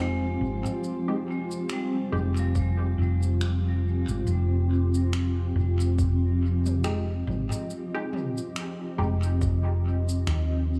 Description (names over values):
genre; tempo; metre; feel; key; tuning
ambient dub; 70 BPM; 4/4; swing 57% on 16ths; F minor; A4 = 442 Hz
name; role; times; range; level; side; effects
granular cloud pad; sustained chords; 0.0-10.8 s; F3 to F5; -33 LUFS; equal; built-in reverb
vibraphone with hard mallets; arpeggios; 0.0-4.3 s; F3 to Ab3; -41 LUFS; equal; vintage 12-bit sampler grit, dub echo
filtered dub chord stab; stabs; 0.0-9.3 s; Ab3 to G4; -38 LUFS; equal; phaser, dub echo
hollow-body short-scale fingered electric bass; bass; 0.0-10.8 s; F1 to Eb2; -27 LUFS; equal; none
organic electronic drum kit; drums; 0.7-10.5 s; finger snaps, shaker, toms; -41 LUFS; equal; dub echo
electronic kick drum; drums; 2.6-9.6 s; none; -32 LUFS; equal; none
room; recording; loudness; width
light reverb, digital ambience; echo-heavy mix, small room ambience; -27 LUFS; mono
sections
0.0-4.3 A section; 4.3-10.8 B section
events
filter sweep on synth stab 0.0-4.3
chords
0.0 Fm9